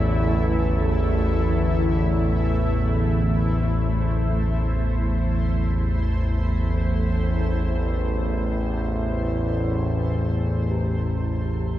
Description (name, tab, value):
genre	dark ambient drone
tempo	free time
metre	none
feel	none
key	A minor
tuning	A4 = 440 Hz
part	granular cloud pad	sustained chords	0.0-11.8 s	A3 to E5	-30 LUFS	equal	built-in reverb, shimmer reverb
part	quartz singing bowl	arpeggios	0.0-4.4, 10.7-11.8 s	D3 to G4	-36 LUFS	right 1 dB	none
part	analog drone	drone	0.0-11.8 s	A1 to E2	-21 LUFS	equal	chorus
room	moderate huge ambient reverb, RT60 8.0 s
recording	cassette tape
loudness	-20 LUFS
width	side -13 dB against mid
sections	0.0-11.8 A section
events	fade-out on ambient pad 0.0-11.8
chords	0.0 A5